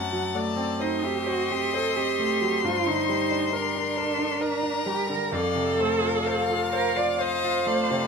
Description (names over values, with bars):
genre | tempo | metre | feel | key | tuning
classical, slow romantic movement for piano quartet | 64-69 BPM | 3/4 | rubato | G minor | A4 = 444 Hz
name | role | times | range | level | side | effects
clear violin | melody | 0.0-8.1 s | A4 to F#5 | -30 LUFS | left 9 dB | none
rich violin | second line | 0.0-8.1 s | F5 to C6 | -30 LUFS | left 7 dB | none
bright concert grand piano | accompaniment | 0.0-8.1 s | F2 to C5 | -28 LUFS | equal | none
warm cello | second line | 0.8-8.1 s | D4 to D5 | -26 LUFS | right 5 dB | none
room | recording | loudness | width
moderate studio reverb, RT60 0.5 s | minimal, uncompressed stereo recording | -23 LUFS | side -5 dB against mid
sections
0.0-8.1 A section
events
none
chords
0.0 F#dim7; 2.7 Gm; 5.3 F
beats
0.80 1.74 | 2.65 3.54 4.42 | 5.33 6.26 7.20